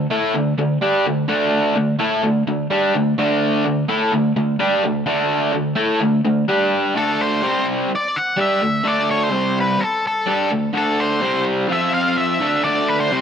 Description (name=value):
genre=rock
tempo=127 BPM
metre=4/4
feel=straight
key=unclear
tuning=A4 = 439 Hz
part: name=raw garage guitar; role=riff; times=0.0-13.2 s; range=C3 to A4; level=-17 LUFS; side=equal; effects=overdrive
part: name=octave-fuzz lead guitar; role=melody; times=7.0-13.2 s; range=A4 to F#5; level=-20 LUFS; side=left 1 dB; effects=distortion
room=light reverb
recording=none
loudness=-16 LUFS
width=side -8 dB against mid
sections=0.0-7.0 A section; 7.0-13.2 B section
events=none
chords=0.0 D5; 6.5 G5; 7.0 D5; 7.4 C5; 7.9 D5; 9.3 C5; 9.8 D5; 11.2 C5; 11.7 F5; 12.4 D5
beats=0.34 0.81 | 1.29 1.76 2.23 2.71 | 3.18 3.65 4.12 4.60 | 5.07 5.54 6.01 6.49 | 6.96 7.43 7.91 8.38 | 8.85 9.33 9.80 10.28 | 10.75 11.22 11.70 12.17 | 12.64 13.12